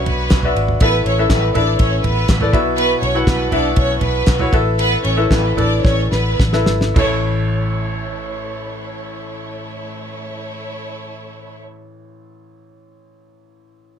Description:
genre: piano-driven pop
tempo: 104-122 BPM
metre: 4/4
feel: straight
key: A major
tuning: A4 = 438 Hz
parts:
  - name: warm studio violin section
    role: second line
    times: 0.0-11.6 s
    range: A3 to D5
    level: -22 LUFS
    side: right 2 dB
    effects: none
  - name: clear baby grand piano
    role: accompaniment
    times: 0.0-14.0 s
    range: A1 to F#5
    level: -21 LUFS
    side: left 2 dB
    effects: none
  - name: vintage muted fingered electric bass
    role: bass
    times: 0.0-11.6 s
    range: G#1 to B1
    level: -20 LUFS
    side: equal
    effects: none
  - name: damped 70s drum kit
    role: drums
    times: 0.1-7.1 s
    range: crash cymbal, handclaps, kick drum, ride cymbal, snare drum, toms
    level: -17 LUFS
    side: equal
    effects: none
room: light reverb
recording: none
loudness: -14 LUFS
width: side -8 dB against mid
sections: 0.0-7.0 A section; 7.0-11.6 B section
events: slowing down 2.8-7.0; drum fill 5.8-7.0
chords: 0.0 Bmadd9; 0.8 Asus2; 2.5 Esus2/B; 4.5 Asus2; 7.0 A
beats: 0.32 | 0.81 1.31 1.80 2.29 | 2.78 3.27 3.77 4.27 | 4.78 5.31 5.84 6.39 | 6.96 7.54 8.12 8.70 | 9.27 9.85 10.43 11.01

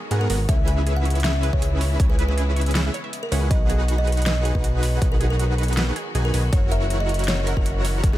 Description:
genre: future bass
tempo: 159 BPM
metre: 4/4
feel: half-time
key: unclear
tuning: A4 = 439 Hz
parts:
  - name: clear symphonic string section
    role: sustained chords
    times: 0.0-8.2 s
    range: C#3 to A#4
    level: -35 LUFS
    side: left 3 dB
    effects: sidechain pumping
  - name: wide unison pluck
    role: arpeggios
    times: 0.1-8.1 s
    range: F#4 to E5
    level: -36 LUFS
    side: right 6 dB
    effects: sidechain pumping, dub echo
  - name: dense compressed supersaw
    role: riff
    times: 0.1-8.2 s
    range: B3 to G#5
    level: -29 LUFS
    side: right 1 dB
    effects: sidechain pumping
  - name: fat analog bass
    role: bass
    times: 0.1-8.2 s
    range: F#1 to G#2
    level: -22 LUFS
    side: equal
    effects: sidechain pumping
  - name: big-room dance drum kit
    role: drums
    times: 0.1-8.2 s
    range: hi-hat, snare drum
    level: -28 LUFS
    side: equal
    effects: overdrive
  - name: buzzing kalimba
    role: melody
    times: 0.2-8.2 s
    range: G#4 to G#5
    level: -30 LUFS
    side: equal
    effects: sidechain pumping, dub echo
  - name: electronic kick drum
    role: drums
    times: 0.5-8.1 s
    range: none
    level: -21 LUFS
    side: equal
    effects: overdrive
room: digital ambience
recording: none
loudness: -19 LUFS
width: side -14 dB against mid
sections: 0.0-8.2 A section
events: none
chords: 0.5 C#m7; 3.5 B6; 6.5 F#7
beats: 0.11 | 0.49 0.87 1.24 1.62 | 2.00 2.38 2.75 3.13 | 3.51 3.88 4.26 4.64 | 5.02 5.39 5.77 6.15 | 6.53 6.90 7.28 7.66 | 8.04

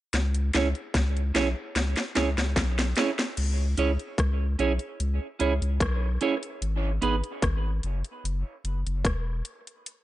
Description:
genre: dub reggae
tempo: 74 BPM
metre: 4/4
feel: straight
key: C# minor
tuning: A4 = 439 Hz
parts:
  - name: warm sub bass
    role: bass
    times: 0.1-9.4 s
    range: E1 to C#2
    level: -26 LUFS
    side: left 1 dB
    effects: none
  - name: drum and bass drum kit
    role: drums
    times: 0.1-10.0 s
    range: crash cymbal, hi-hat, kick drum, rim click, snare drum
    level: -28 LUFS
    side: left 1 dB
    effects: overdrive
  - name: clean electric guitar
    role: accompaniment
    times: 0.5-7.2 s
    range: B3 to C#5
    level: -29 LUFS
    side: right 5 dB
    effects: dub echo
room: digital ambience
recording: nothing above 10.3 kHz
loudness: -24 LUFS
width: side -15 dB against mid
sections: 0.1-3.4 A section; 3.4-10.0 B section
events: drum fill 0.1-3.4; break 6.6-10.0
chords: 0.1 C#m; 6.6 G#m; 8.2 Esus2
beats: | 0.13 0.94 1.75 2.56 | 3.37 4.18 4.99 5.80 | 6.62 7.42 8.23 9.05 | 9.86

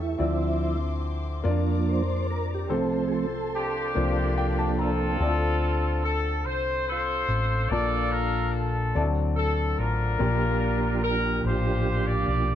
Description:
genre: slow gospel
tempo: 48 BPM (dotted quarters)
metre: 6/8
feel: straight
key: unclear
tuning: A4 = 440 Hz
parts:
  - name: clear concert grand piano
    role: accompaniment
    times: 0.0-12.6 s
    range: Bb2 to Bb5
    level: -31 LUFS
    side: left 5 dB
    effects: none
  - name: dark studio string section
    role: sustained chords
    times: 0.0-5.2 s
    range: C5 to D6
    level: -40 LUFS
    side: left 4 dB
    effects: none
  - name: mellow tonewheel organ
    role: sustained chords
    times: 0.0-5.2, 10.2-12.6 s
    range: F3 to E5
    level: -28 LUFS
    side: right 4 dB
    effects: fast rotary speaker, chorus vibrato
  - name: hollow-body short-scale fingered electric bass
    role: bass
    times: 0.0-12.6 s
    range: A1 to F2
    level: -27 LUFS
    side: equal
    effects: none
  - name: mellow horn section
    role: melody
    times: 3.5-12.6 s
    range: Bb3 to D5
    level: -28 LUFS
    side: left 1 dB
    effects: none
room: light reverb, small room ambience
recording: dark, warm production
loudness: -23 LUFS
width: side -10 dB against mid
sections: 0.0-5.2 A section; 5.2-12.6 B section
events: tonewheel organ solo 0.0-5.2; grand piano fill 4.0-5.2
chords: 0.2 Dm9; 1.5 Bb/F; 2.7 F/C; 4.0 C9sus4; 5.2 Dm7; 7.7 Bbmaj7; 8.9 D7; 10.2 Gm7/Bb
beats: | 0.20 1.46 | 2.71 3.96 | 5.21 6.45 | 7.70 8.95 | 10.20 11.44

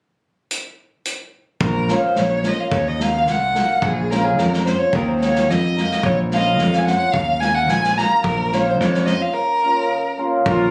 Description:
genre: balkan folk, Balkan wedding band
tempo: 108 BPM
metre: 2/4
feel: straight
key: Bb minor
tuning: A4 = 440 Hz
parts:
  - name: loose indie drum kit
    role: percussion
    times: 0.5-10.6 s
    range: hi-hat, kick drum, snare drum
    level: -27 LUFS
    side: equal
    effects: none
  - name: dark violin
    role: melody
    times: 1.6-10.7 s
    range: Ab4 to Bb5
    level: -22 LUFS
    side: equal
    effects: none
  - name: modern bright picked electric bass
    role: bass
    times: 1.6-10.7 s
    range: Bb1 to F2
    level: -23 LUFS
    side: equal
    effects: none
  - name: hammered dulcimer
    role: accompaniment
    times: 1.9-10.4 s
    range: Bb3 to Bb4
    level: -26 LUFS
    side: equal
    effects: none
  - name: warm trumpet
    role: second line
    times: 10.5-10.7 s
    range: F4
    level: -20 LUFS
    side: equal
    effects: none
room: light reverb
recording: recorded on a phone in the room, studio reverb, compression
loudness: -19 LUFS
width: mono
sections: 0.5-1.6 A section; 1.6-10.5 B section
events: none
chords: 0.5 N.C.; 1.6 Bbm; 2.7 Ebm; 3.8 Bbm; 4.9 Ebm; 6.0 Bbm; 7.1 Ebm; 8.3 Bbm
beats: | 0.51 1.06 | 1.62 2.17 | 2.72 3.28 | 3.83 4.38 | 4.94 5.49 | 6.04 6.60 | 7.15 7.70 | 8.25 8.80 | 9.36 9.91 | 10.46

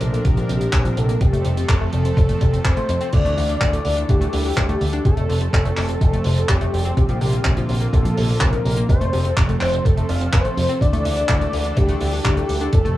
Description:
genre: italo disco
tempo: 125 BPM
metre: 4/4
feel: straight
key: D minor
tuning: A4 = 440 Hz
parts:
  - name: wide unison lead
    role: melody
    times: 0.0-13.0 s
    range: G4 to F5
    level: -24 LUFS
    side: left 1 dB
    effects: tape echo
  - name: warm analog pad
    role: sustained chords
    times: 0.0-13.0 s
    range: D3 to Bb4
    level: -28 LUFS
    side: right 1 dB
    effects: chorus, tremolo
  - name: analog pluck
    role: arpeggios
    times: 0.0-12.9 s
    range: C3 to D4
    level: -25 LUFS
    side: left 1 dB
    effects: chorus, tape echo
  - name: picked electric bass with an envelope filter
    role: bass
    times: 0.0-12.9 s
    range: F1 to F2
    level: -22 LUFS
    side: equal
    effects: none
  - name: damped 70s drum kit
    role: drums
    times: 0.0-12.9 s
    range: crash cymbal, handclaps, hi-hat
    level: -27 LUFS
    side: equal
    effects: high-pass filter on hats, high-pass filter on cymbals, high-pass filter on snare, high-pass filter on room
  - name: electronic kick drum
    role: drums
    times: 0.2-12.8 s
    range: none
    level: -18 LUFS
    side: equal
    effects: none
room: studio reverb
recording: dry, gritty hardware recording, small room ambience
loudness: -16 LUFS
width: side -15 dB against mid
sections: 0.0-3.1 A section; 3.1-13.0 B section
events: filter sweep on synth arpeggio sound 0.0-3.1; filter sweep on analog synth lead 0.0-3.1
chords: 0.0 Bbadd9; 1.2 F; 3.1 Dsus2; 5.1 F; 7.0 Bbadd9; 8.9 F; 10.8 Dsus2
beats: 0.25 0.73 | 1.21 1.69 2.17 2.65 | 3.13 3.61 4.09 4.57 | 5.05 5.53 6.01 6.49 | 6.97 7.45 7.93 8.41 | 8.89 9.37 9.85 10.33 | 10.81 11.29 11.77 12.25 | 12.73

